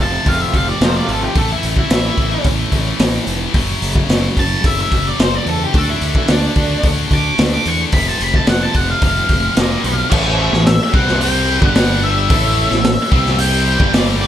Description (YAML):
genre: quiet-loud alternative rock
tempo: 110 BPM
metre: 4/4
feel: straight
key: unclear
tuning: A4 = 440 Hz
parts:
  - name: octave-fuzz lead guitar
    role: melody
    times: 0.0-14.3 s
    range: D4 to D6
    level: -20 LUFS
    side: equal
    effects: distortion
  - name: electric guitar through a small old amp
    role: arpeggios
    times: 0.0-1.3 s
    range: F2 to F4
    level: -24 LUFS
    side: right 2 dB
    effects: tremolo
  - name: heavy high-gain guitar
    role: riff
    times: 0.0-14.3 s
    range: F2 to D4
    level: -20 LUFS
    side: left 2 dB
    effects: distortion
  - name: fuzz fingered electric bass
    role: bass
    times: 0.0-14.3 s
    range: F1 to E2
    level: -20 LUFS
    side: equal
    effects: overdrive
  - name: raw garage drum kit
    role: drums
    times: 0.3-14.1 s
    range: crash cymbal, hi-hat, kick drum, snare drum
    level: -16 LUFS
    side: equal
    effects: none
  - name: tonewheel organ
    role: sustained chords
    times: 10.1-14.3 s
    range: C3 to E5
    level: -27 LUFS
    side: equal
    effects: slow rotary speaker
  - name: heavy high-gain guitar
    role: riff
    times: 10.1-14.3 s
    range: G2 to C4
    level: -22 LUFS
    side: equal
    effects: distortion
room: light reverb, small room reverb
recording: none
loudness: -13 LUFS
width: side -11 dB against mid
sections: 0.0-10.1 A section; 10.1-14.3 B section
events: lead electric guitar solo 0.0-10.1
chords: 0.0 F; 1.4 A5; 3.5 F#5; 5.7 D5; 7.9 F5; 10.1 A; 10.9 C5; 11.6 G5; 12.3 A; 13.1 C5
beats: 0.26 0.81 | 1.36 1.91 2.45 3.00 | 3.55 4.10 4.64 5.19 | 5.74 6.29 6.83 7.38 | 7.93 8.48 9.03 9.57 | 10.12 10.67 11.21 11.76 | 12.30 12.85 13.40 13.94